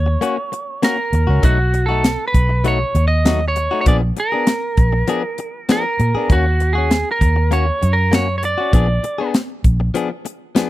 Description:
straight-eighth soul blues; 99 BPM; 4/4; straight; Eb minor; A4 = 441 Hz
lightly driven lead guitar; melody; 0.0-9.3 s; F#4 to D#5; -20 LUFS; right 2 dB
vintage muted fingered electric bass; bass; 0.0-9.9 s; Bb1 to Bb2; -17 LUFS; equal
direct-recorded clean electric guitar; stabs; 0.1-10.7 s; F3 to Ab4; -23 LUFS; left 6 dB
tight funk drum kit; drums; 0.2-10.7 s; hi-hat, kick drum, snare drum; -17 LUFS; equal
small room ambience; dry, close 1970s-style studio recording; -15 LUFS; side -16 dB against mid
0.0-10.7 A section
0.0 Ebm7; 1.4 B7; 3.9 Bb7b9; 6.3 Ebm7; 8.7 Bb7b9
0.22 0.83 | 1.44 2.04 2.65 3.26 | 3.87 4.47 5.08 5.69 | 6.30 6.91 7.51 8.12 | 8.73 9.34 9.95 10.56

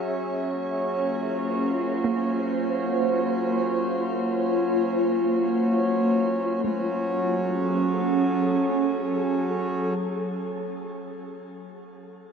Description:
ambient; free time; A4 = 435 Hz
glassy FM pad; sustained chords; 0.0-10.4 s; F#3 to C#5; -24 LUFS; right 1 dB; ensemble chorus, built-in reverb, phaser, shimmer reverb
hand-pumped harmonium; drone; 0.0-9.9 s; F#3 to C#4; -29 LUFS; equal
soft round pluck; arpeggios; 2.0-10.0 s; A3 to A#3; -33 LUFS; right 2 dB; lush chorus, diffuse ambient delay
wet huge ambient reverb, RT60 7.5 s; -22 LUFS; side -6 dB against mid
0.0-6.6 A section; 6.6-9.9 B section
filter sweep on ambient pad 0.0-6.6
0.1 A#m7; 6.6 F#madd9
free time

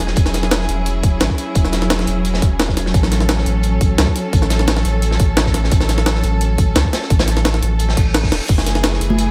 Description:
liquid drum and bass; 173 BPM; 4/4; straight; A4 = 440 Hz
rich studio string section; sustained chords; 0.0-9.3 s; E3 to A4; -25 LUFS; equal; sidechain pumping
saturated sub bass; bass; 0.0-9.3 s; E1 to C#2; -20 LUFS; equal
crunchy breakbeat drum kit; drums; 0.0-9.3 s; hi-hat, snare drum; -28 LUFS; equal; high-pass filter on hats, high-pass filter on snare, high-pass filter on room
jungle sampler-style drum kit; drums; 0.0-9.3 s; crash cymbal, hi-hat, snare drum; -23 LUFS; equal
electronic kick drum; drums; 0.2-8.6 s; -18 LUFS; equal
reverse cymbal; sound effects; 7.9-8.5 s; -31 LUFS; equal
congas; percussion; 9.1-9.2 s; -19 LUFS; equal
small room ambience; -16 LUFS; mono
0.0-9.3 A section
reverse cymbal 7.9-8.5
0.0 E69; 2.9 A6; 8.5 F#m9
| 0.17 0.52 0.86 1.21 | 1.56 1.90 2.25 2.60 | 2.94 3.29 3.64 3.98 | 4.33 4.68 5.03 5.37 | 5.72 6.07 6.41 6.76 | 7.11 7.45 7.80 8.15 | 8.49 8.84 9.19

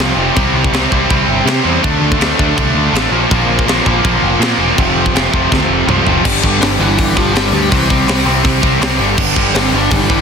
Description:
punk rock; 163 BPM; 4/4; straight; A4 = 442 Hz
distorted electric guitar; riff; 0.0-10.2 s; F2 to D4; -17 LUFS; left 17 dB; overdrive
distorted electric guitar; riff; 0.0-10.2 s; F2 to D4; -17 LUFS; right 15 dB; distortion
tight distorted guitar; riff; 0.0-6.2 s; F2 to E4; -19 LUFS; right 1 dB; distortion
growling picked electric bass; bass; 0.0-10.2 s; E1 to C3; -18 LUFS; equal; overdrive
tight metal drum kit; drums; 0.0-10.2 s; crash cymbal, hi-hat, kick drum, snare drum, toms; -16 LUFS; equal
dark smooth lead guitar; melody; 6.6-10.2 s; E3 to D5; -18 LUFS; left 2 dB; overdrive
little or no reverb; dense, heavily limited modern master; -10 LUFS; side -6 dB against mid
0.0-6.2 A section; 6.2-10.2 B section
drum fill 5.5-6.2
0.4 C; 1.8 Dm; 3.1 Bb; 4.8 F; 6.2 G5; 7.7 C; 9.0 G5
| 0.36 0.73 1.10 1.47 | 1.83 2.20 2.57 2.94 | 3.31 3.67 4.04 4.41 | 4.77 5.14 5.51 5.88 | 6.24 6.61 6.97 7.34 | 7.71 8.07 8.44 8.81 | 9.18 9.54 9.91

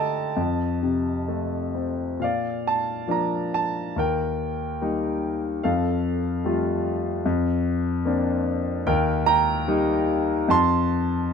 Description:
classical, lyrical solo piano; 63-77 BPM; 4/4; rubato; Bb major; A4 = 440 Hz
clear concert grand piano; solo; 0.0-11.3 s; Eb2 to C6; -22 LUFS; left 1 dB
moderate studio reverb, RT60 0.6 s; dark, warm production; -22 LUFS; side -6 dB against mid
0.0-2.2 A section; 2.2-11.3 B section
0.4 F7; 2.2 Bb; 4.0 Eb; 5.6 Fadd9; 7.2 Bbadd9/F; 8.9 Eb; 10.5 F
0.39 1.31 | 2.23 3.10 3.96 4.81 | 5.63 6.45 7.24 8.04 | 8.86 9.67 10.50

